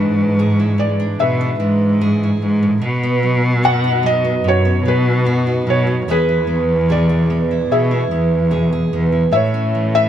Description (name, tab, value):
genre	acoustic folk-pop ballad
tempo	74 BPM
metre	4/4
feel	straight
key	unclear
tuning	A4 = 441 Hz
part	felt-muted upright piano	melody	0.0-10.1 s	D4 to F#5	-19 LUFS	left 1 dB	none
part	fingerpicked steel-string acoustic guitar	accompaniment	0.0-10.1 s	F#2 to B4	-21 LUFS	right 4 dB	none
part	warm cello	bass	0.0-10.1 s	E2 to B2	-16 LUFS	equal	none
room	light reverb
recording	none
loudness	-14 LUFS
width	side -10 dB against mid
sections	0.0-10.1 A section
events	none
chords	0.0 E7/G#; 2.8 B; 6.1 E; 9.4 A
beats	0.39 1.21 2.02 | 2.83 3.64 4.45 5.26 | 6.08 6.89 7.71 8.53 | 9.35